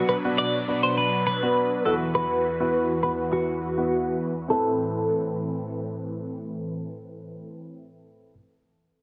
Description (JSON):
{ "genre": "pop", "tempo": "102 BPM", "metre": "4/4", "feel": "straight", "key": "A dorian", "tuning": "A4 = 439 Hz", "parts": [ { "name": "twelve-string electric guitar", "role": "melody", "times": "0.0-8.3 s", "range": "F#4 to D5", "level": "-28 LUFS", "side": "equal", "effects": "phaser, low-pass filter" }, { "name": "warm concert grand piano", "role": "accompaniment", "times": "0.0-8.3 s", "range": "B3 to B4", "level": "-31 LUFS", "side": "equal", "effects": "low-pass filter" }, { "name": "filtered supersaw swell", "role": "sustained chords", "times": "0.0-7.6 s", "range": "E2 to B4", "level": "-33 LUFS", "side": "equal", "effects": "phaser, low-pass filter" } ], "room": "light reverb, small room ambience", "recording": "none", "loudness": "-25 LUFS", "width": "mono", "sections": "0.0-4.5 A section; 4.5-6.9 B section", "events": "filter sweep 0.0-4.5", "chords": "0.0 Bm; 1.9 Esus2; 4.5 Amadd9" }